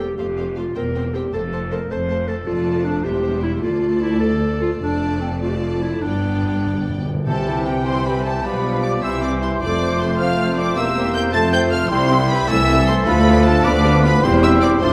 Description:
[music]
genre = quick classical-period movement for symphony orchestra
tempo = 103 BPM (dotted quarters)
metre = 6/8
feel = rubato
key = C major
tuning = A4 = 440 Hz
[part]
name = rich studio violin section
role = melody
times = 0.0-14.9 s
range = E5 to A6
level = -31 LUFS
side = equal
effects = none
[part]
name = dark clarinet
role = second line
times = 0.0-14.9 s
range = C4 to C5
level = -26 LUFS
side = equal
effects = none
[part]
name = rich studio violin section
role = second line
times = 0.0-14.9 s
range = G4 to A5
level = -32 LUFS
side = equal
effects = none
[part]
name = rich studio viola section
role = accompaniment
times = 0.0-14.9 s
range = G3 to C5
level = -31 LUFS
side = equal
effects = none
[part]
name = clear studio cello section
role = bass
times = 0.0-14.9 s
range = C2 to C3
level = -26 LUFS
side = equal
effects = none
[part]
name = rich studio double bass section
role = bass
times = 0.0-14.9 s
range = E1 to D2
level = -26 LUFS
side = equal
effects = none
[part]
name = timpani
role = percussion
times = 6.0-7.8 s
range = G2 to C3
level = -29 LUFS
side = equal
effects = none
[part]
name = mellow hollow silver concert flute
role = second line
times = 7.3-14.9 s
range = G5 to A6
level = -28 LUFS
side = equal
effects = none
[part]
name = warm oboe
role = second line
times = 7.3-14.9 s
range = A4 to G5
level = -28 LUFS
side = equal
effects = none
[part]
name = clear bassoon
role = accompaniment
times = 7.3-14.9 s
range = E3 to Bb3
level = -28 LUFS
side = equal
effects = none
[part]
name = dark French horn section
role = sustained chords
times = 7.3-14.9 s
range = G3 to G4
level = -26 LUFS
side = equal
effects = none
[sound]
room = wet scoring stage reverb, RT60 1.4 s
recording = none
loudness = -19 LUFS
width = mono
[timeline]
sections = 0.0-7.3 A section; 7.3-14.9 B section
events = timpani fill 6.0-7.3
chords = 0.2 F; 0.8 C7/E; 1.3 F; 3.1 C/E; 3.6 Dm; 4.8 Dm/F; 6.0 G; 7.3 C; 8.4 G7/B; 9.0 C; 9.6 F; 10.8 C7/E; 11.3 F; 11.9 C; 12.5 Am/C; 13.1 Dm; 13.6 Bdim/D; 14.2 C/E

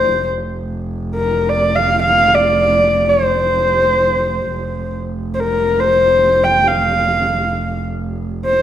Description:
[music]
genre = mongolian traditional, Mongolian folk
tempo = free time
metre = none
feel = none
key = F zhi mode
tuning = A4 = 440 Hz
[part]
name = dark horsehead fiddle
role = melody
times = 0.0-8.6 s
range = Bb4 to G5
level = -14 LUFS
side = equal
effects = none
[part]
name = clear double bass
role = drone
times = 0.0-8.6 s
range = F1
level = -21 LUFS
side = right 1 dB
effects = none
[sound]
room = moderate recital hall reverb, RT60 1.6 s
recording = dark, warm production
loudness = -13 LUFS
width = side -10 dB against mid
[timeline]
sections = 0.0-8.6 A section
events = none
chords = none

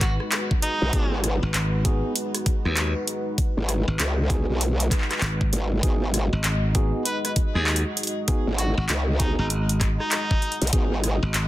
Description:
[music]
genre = glitch hop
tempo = 98 BPM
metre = 4/4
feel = swing 62% on 16ths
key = G# minor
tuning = A4 = 440 Hz
[part]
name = mellow harmonica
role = melody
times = 0.0-1.2, 7.1-10.6 s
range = D#4 to B4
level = -31 LUFS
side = equal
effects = ping-pong delay
[part]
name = dark analog pad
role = sustained chords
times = 0.0-11.5 s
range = G#3 to D#5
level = -32 LUFS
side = left 1 dB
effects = chorus, sidechain pumping
[part]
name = glassy slap bass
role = bass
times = 0.0-11.5 s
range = G#1 to D#2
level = -24 LUFS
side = equal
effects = none
[part]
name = drum and bass drum kit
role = drums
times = 0.0-11.5 s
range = handclaps, hi-hat, rim click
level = -27 LUFS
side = equal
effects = overdrive
[part]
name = electronic kick drum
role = drums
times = 0.0-10.9 s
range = none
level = -23 LUFS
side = equal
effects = overdrive
[part]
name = growl bass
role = bass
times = 0.8-11.2 s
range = G#1 to C#2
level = -23 LUFS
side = equal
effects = chorus, tube saturation
[part]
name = tine electric piano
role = stabs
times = 0.9-10.9 s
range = B3 to G#4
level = -33 LUFS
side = right 1 dB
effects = sidechain pumping, ping-pong delay
[sound]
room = digital ambience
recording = dense, heavily limited modern master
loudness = -21 LUFS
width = side -15 dB against mid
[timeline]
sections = 0.0-11.5 A section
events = none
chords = 0.0 G#m7

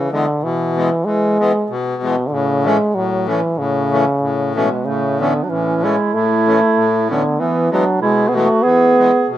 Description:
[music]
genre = alpine folk, alpine dance band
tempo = 95 BPM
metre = 2/4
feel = swing 53% on 8ths, rubato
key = A major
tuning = A4 = 445 Hz
[part]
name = clear euphonium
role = melody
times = 0.0-9.3 s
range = B2 to B3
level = -16 LUFS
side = equal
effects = none
[part]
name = accordion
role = accompaniment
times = 0.0-9.4 s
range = A2 to C#4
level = -20 LUFS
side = left 3 dB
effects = none
[part]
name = clear clarinet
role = second line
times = 4.6-9.3 s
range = G#3 to G#4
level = -20 LUFS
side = right 7 dB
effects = none
[sound]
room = light reverb, small room ambience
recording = rough home demo mix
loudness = -14 LUFS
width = side -12 dB against mid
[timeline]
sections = 0.0-4.8 A section; 4.8-9.4 A section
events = none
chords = 0.0 E; 2.3 A; 7.4 E

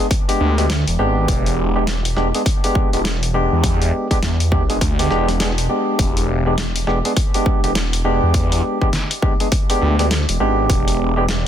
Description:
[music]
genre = glitch hop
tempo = 102 BPM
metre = 4/4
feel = swing 61% on 16ths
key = unclear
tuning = A4 = 442 Hz
[part]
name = barky tine electric piano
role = stabs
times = 0.0-11.2 s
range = G#3 to G#4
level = -20 LUFS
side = equal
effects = wide subtle chorus, sidechain pumping, dub echo
[part]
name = boom bap sampler-style drum kit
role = drums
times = 0.1-11.4 s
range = hi-hat, snare drum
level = -24 LUFS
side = left 1 dB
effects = none
[part]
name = electronic kick drum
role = drums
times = 0.1-10.8 s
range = none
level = -19 LUFS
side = equal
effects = overdrive
[part]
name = phased detuned saw bass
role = bass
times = 0.4-11.5 s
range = E1 to E2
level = -19 LUFS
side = equal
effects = phaser, overdrive
[sound]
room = light reverb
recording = dense, heavily limited modern master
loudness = -15 LUFS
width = side -10 dB against mid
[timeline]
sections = 0.0-11.5 A section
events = none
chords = 0.0 E7#9

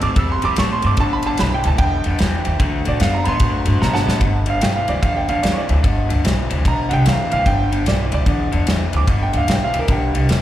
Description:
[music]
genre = electric blues shuffle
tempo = 148 BPM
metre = 4/4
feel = swing 64% on 8ths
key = G mixolydian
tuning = A4 = 439 Hz
[part]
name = clear upright piano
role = second line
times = 0.0-10.3 s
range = G4 to E6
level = -23 LUFS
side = right 4 dB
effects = analog delay, slapback echo
[part]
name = electric guitar through a small old amp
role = riff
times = 0.0-10.4 s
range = G2 to B3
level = -23 LUFS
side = left 3 dB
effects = slapback echo
[part]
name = upright bass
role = bass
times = 0.0-10.4 s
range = G1 to B2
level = -19 LUFS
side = equal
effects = none
[part]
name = natural country drum kit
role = drums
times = 0.0-10.4 s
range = kick drum, ride cymbal, snare drum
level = -21 LUFS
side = equal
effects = none
[sound]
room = light reverb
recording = live gig heard through the venue's PA, recital hall reverb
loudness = -15 LUFS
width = side -13 dB against mid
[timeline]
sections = 0.0-4.2 A section; 4.2-10.4 A section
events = upright piano solo 0.0-4.2, 4.2-10.4; drum fill 3.8-4.2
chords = 0.0 C6; 1.0 G6; 2.6 D6; 4.2 G6

